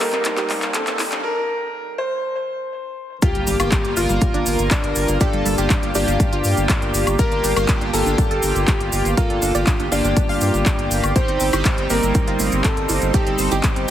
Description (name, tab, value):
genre	progressive house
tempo	121 BPM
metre	4/4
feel	straight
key	G minor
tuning	A4 = 440 Hz
part	clear grand piano	melody	0.0-13.8 s	D4 to C5	-24 LUFS	left 2 dB	tape echo
part	evolving wavetable pad	sustained chords	0.0-13.9 s	G2 to C6	-30 LUFS	equal	chorus, built-in reverb, phaser, sidechain pumping
part	wide unison pluck	arpeggios	0.0-13.8 s	G3 to F5	-28 LUFS	moving between left 6 dB and right 7 dB	auto-pan, sidechain pumping, tape echo
part	chorused polysynth	stabs	0.0-13.9 s	G2 to Bb4	-23 LUFS	right 2 dB	cassette tape, sidechain pumping, tape echo
part	deep house drum kit	drums	0.0-13.9 s	handclaps, hi-hat, woodblock	-26 LUFS	left 1 dB	none
part	riser and sub drop	sound effects	0.0-5.2 s	none	-32 LUFS	equal	none
part	congas	percussion	0.2-1.1, 11.5-13.6 s	none	-29 LUFS	right 4 dB	overdrive, sidechain pumping on perc
part	electronic kick drum	drums	3.2-13.7 s	none	-19 LUFS	equal	none
part	cabasa	percussion	3.2-13.7 s	none	-29 LUFS	right 1 dB	none
part	saturated sub bass	bass	3.3-13.9 s	G1 to G2	-23 LUFS	equal	sidechain pumping
room	light reverb, digital ambience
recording	heavily compressed radio sound, high-pass filter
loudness	-17 LUFS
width	side -11 dB against mid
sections	0.0-3.2 A section; 3.2-13.9 B section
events	build-up 0.0-3.2; drum fill 0.0-1.2; filter sweep 0.0-3.2; break 1.2-3.2; drop 3.2-13.9; impact 3.2-5.2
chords	0.0 Cm/G; 3.2 Gm7; 11.2 Cm/G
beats	0.25 0.74 | 1.24 1.74 2.23 2.73 | 3.22 3.72 4.21 4.71 | 5.21 5.70 6.20 6.70 | 7.19 7.69 8.18 8.68 | 9.17 9.67 10.17 10.66 | 11.16 11.65 12.15 12.64 | 13.14 13.64